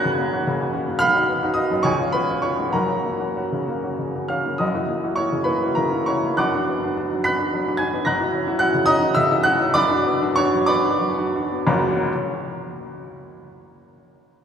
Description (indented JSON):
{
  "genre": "classical, romantic character piece for solo piano",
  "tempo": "56-74 BPM (dotted quarters)",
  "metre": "6/8",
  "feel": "rubato",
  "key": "F# major",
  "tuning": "A4 = 443 Hz",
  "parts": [
    { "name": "clear upright piano", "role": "solo", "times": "0.0-12.1 s", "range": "F#1 to B6", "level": "-19 LUFS", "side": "equal", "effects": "none" }
  ],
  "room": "wet church reverb, RT60 3.4 s",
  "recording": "recorded in a church or concert hall",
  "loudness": "-19 LUFS",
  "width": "side -8 dB against mid",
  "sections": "0.0-4.6 A section; 4.6-11.7 B section; 11.7-13.5 C section",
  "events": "slowing down 7.2-11.7",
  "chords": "0.0 F#; 1.0 B; 1.9 C#7; 2.8 F#; 4.6 F#7; 6.4 Bm/F#; 8.1 F#7; 9.7 Bm/F#; 11.7 F#",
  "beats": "0.19 | 1.01 1.86 | 2.75 3.69 | 4.61 5.48 | 6.41 7.25 | 8.06 8.88 | 9.74 10.68 | 11.68"
}